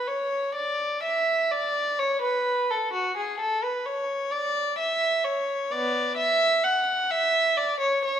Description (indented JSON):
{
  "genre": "classical, baroque-style suite movement for unaccompanied violin",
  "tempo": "64 BPM",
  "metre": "3/4",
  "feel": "rubato",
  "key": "unclear",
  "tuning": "A4 = 440 Hz",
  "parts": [
    { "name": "dark violin", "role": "solo", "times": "0.0-8.2 s", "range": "B3 to F#5", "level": "-23 LUFS", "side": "equal", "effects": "none" }
  ],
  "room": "wet recital hall reverb, RT60 1.5 s",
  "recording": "minimal, uncompressed stereo recording",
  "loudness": "-23 LUFS",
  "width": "side -9 dB against mid",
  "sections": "0.0-8.2 A section",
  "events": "none",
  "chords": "none",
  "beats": "| 0.07 1.03 1.98 | 2.93 3.86 4.80 | 5.72 6.65 7.58"
}